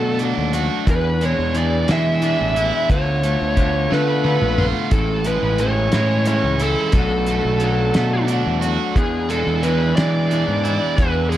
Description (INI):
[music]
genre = indie rock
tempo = 59 BPM (dotted quarters)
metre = 6/8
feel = straight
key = unclear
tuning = A4 = 435 Hz
[part]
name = bluesy overdriven lead guitar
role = melody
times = 0.0-11.4 s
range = G#4 to E5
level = -22 LUFS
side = equal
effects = distortion, slapback echo
[part]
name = crunchy overdriven guitar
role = riff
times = 0.0-11.4 s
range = E2 to F#4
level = -24 LUFS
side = right 8 dB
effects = wide subtle chorus, slapback echo
[part]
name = electric guitar through a small old amp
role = riff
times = 0.0-11.4 s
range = A2 to G#4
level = -24 LUFS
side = left 6 dB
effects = vibrato effect
[part]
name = growling fingered electric bass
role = bass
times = 0.0-11.4 s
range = A1 to E3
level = -21 LUFS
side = equal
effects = overdrive
[part]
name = cloth-damped thuddy drum kit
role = drums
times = 0.2-11.4 s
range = hi-hat, kick drum, snare drum, toms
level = -20 LUFS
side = equal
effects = none
[sound]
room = light reverb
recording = none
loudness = -16 LUFS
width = side -12 dB against mid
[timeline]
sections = 0.0-11.4 A section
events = drum fill 3.9-4.9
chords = 0.0 Bm7; 0.9 E7; 2.9 Dm6; 4.9 Amaj7; 6.9 Bm7; 9.0 E7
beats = | 0.87 1.89 | 2.90 3.91 | 4.92 5.93 | 6.95 7.96 | 8.97 9.98 | 10.98